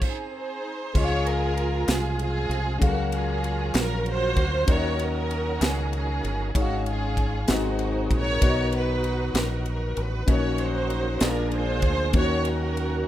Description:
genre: slow gospel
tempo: 64 BPM (dotted quarters)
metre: 6/8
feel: straight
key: Db major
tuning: A4 = 445 Hz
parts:
  - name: breathy alto saxophone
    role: melody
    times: 0.0-0.7 s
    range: C5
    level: -39 LUFS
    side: right 9 dB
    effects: tape echo
  - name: rich studio string section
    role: melody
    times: 0.0-13.1 s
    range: Bb3 to Db5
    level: -28 LUFS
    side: right 2 dB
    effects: none
  - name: dark grand piano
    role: accompaniment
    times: 0.0-13.1 s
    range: Ab2 to C6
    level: -29 LUFS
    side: left 4 dB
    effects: none
  - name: bright tonewheel organ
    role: sustained chords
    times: 0.0-13.1 s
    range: C3 to F5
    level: -35 LUFS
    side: right 4 dB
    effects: slow rotary speaker, overdrive, chorus vibrato
  - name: crisp fusion drum kit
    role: drums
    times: 0.0-12.9 s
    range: crash cymbal, kick drum, ride cymbal, snare drum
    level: -25 LUFS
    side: equal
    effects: none
  - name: deep dub fingered electric bass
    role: bass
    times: 0.9-13.0 s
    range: G1 to Eb2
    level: -28 LUFS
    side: equal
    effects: none
  - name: group handclap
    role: percussion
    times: 1.9-11.5 s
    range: none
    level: -36 LUFS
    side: left 7 dB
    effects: none
room: light reverb, studio reverb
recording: rough home demo mix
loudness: -22 LUFS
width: side -12 dB against mid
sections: 1.0-13.1 A section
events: stop 0.0-1.0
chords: 0.0 Ab; 1.0 Dbmaj7; 2.8 Gbmaj7/Db; 4.7 Ebm7; 6.5 Db/Ab; 7.5 Ab7; 8.4 Cbmaj7; 10.3 Gb6/Bb; 11.2 Bb7; 12.1 Ebm7

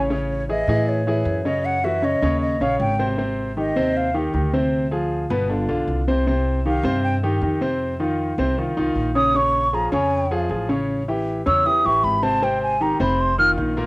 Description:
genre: jazz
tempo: 156 BPM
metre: 4/4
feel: straight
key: Ab major from 3.2 s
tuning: A4 = 441 Hz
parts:
  - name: warm grand piano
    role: accompaniment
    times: 0.0-13.9 s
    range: Bb2 to C#5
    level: -22 LUFS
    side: equal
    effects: cassette tape, plate reverb
  - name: upright bass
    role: bass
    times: 0.0-13.9 s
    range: F1 to A2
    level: -25 LUFS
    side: equal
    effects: none
  - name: mellow hollow silver concert flute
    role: melody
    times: 0.3-4.2, 6.7-13.5 s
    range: C#5 to F6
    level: -21 LUFS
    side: equal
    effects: cassette tape, plate reverb
room: moderate studio ambience, RT60 0.5 s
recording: home recording on cassette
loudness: -18 LUFS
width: side -23 dB against mid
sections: 0.0-3.2 A section; 3.2-13.9 B section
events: flute solo 3.2-13.9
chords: 0.1 Amaj7; 1.6 F#5; 2.4 D#5; 3.2 Abmaj7; 4.7 Dm7b5; 5.5 G7; 6.3 Cm; 7.8 F5; 9.3 Bbm7; 10.9 A7; 12.4 Abmaj7; 13.2 F5

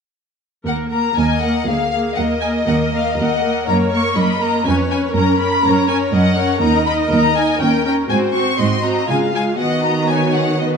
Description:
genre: quick classical-period movement for symphony orchestra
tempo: 121 BPM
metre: 3/4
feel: rubato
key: Eb minor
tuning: A4 = 440 Hz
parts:
  - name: clear studio violin section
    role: melody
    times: 0.7-10.7 s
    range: Eb5 to Db6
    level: -20 LUFS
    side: left 4 dB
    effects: none
  - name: rich chamber viola section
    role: accompaniment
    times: 0.7-10.8 s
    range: G#3 to Cb5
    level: -19 LUFS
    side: equal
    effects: none
  - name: rich symphonic cello section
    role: bass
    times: 0.7-10.8 s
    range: D2 to D#3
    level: -20 LUFS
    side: right 3 dB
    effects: none
  - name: rich chamber violin section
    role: second line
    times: 1.2-10.8 s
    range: Bb4 to Gb5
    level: -22 LUFS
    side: left 3 dB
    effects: none
room: moderate scoring stage reverb, RT60 1.9 s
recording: dark, warm production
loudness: -14 LUFS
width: side -6 dB against mid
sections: 0.7-10.8 A section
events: none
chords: 0.7 Eb5; 1.7 Bb7/D; 2.2 Ebm; 3.7 Gb; 4.7 Db7/F; 5.2 Gb; 6.6 D#5; 7.6 D#7; 8.1 G#7; 9.1 C#; 9.6 B/D#

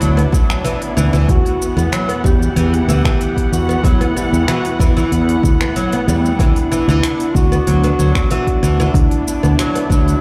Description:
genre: organic downtempo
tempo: 94 BPM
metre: 4/4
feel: straight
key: E minor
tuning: A4 = 439 Hz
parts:
  - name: dark chamber string section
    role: sustained chords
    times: 0.0-10.2 s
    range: E3 to F#5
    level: -25 LUFS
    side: equal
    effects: sidechain pumping
  - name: oud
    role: arpeggios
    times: 0.0-10.2 s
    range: E3 to B3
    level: -24 LUFS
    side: equal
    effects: delay
  - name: fretless electric bass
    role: bass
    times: 0.0-10.1 s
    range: D2 to E2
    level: -18 LUFS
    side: equal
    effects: sidechain pumping
  - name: deep house drum kit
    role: drums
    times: 0.0-10.2 s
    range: finger snaps, hi-hat, shaker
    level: -28 LUFS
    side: equal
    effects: none
  - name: electronic kick drum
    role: drums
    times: 0.3-10.0 s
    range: none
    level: -18 LUFS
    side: equal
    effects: none
  - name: mellow duduk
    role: melody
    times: 1.3-10.2 s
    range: D4 to G4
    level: -23 LUFS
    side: equal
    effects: digital delay
room: light reverb, digital ambience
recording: played on a big sound system in a bare room, large studio reverb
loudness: -15 LUFS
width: mono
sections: 0.0-10.2 A section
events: none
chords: 0.0 Bm/D; 1.3 Em; 6.4 Bm/D

